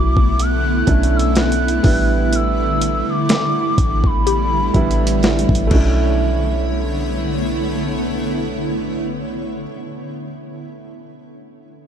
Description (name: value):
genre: contemporary R&B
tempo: 62 BPM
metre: 4/4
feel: swing 54% on 16ths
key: B minor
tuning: A4 = 440 Hz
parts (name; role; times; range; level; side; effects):
- hollow clarinet-like synth lead; melody; 0.0-5.5 s; B5 to F#6; -22 LUFS; left 1 dB; chorus
- warm concert grand piano; accompaniment; 0.0-11.9 s; G3 to E4; -24 LUFS; right 5 dB; none
- granular cloud pad; sustained chords; 0.0-9.7 s; D3 to C#5; -22 LUFS; equal; built-in reverb, sidechain pumping
- clean 808-style bass; bass; 0.0-9.7 s; A1 to B1; -20 LUFS; equal; none
- mallet-like synth pluck; texture; 0.0-9.7 s; F#4 to A4; -28 LUFS; left 6 dB; none
- dusty soul sampler-style drum kit; drums; 0.2-6.0 s; crash cymbal, hi-hat, kick drum, snare drum; -18 LUFS; equal; overdrive
room: little or no reverb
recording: dark, warm production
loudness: -15 LUFS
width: side -8 dB against mid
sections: 0.0-6.2 A section; 6.2-10.1 B section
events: none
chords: 0.0 Bm11; 1.8 A9sus4; 5.7 Bm11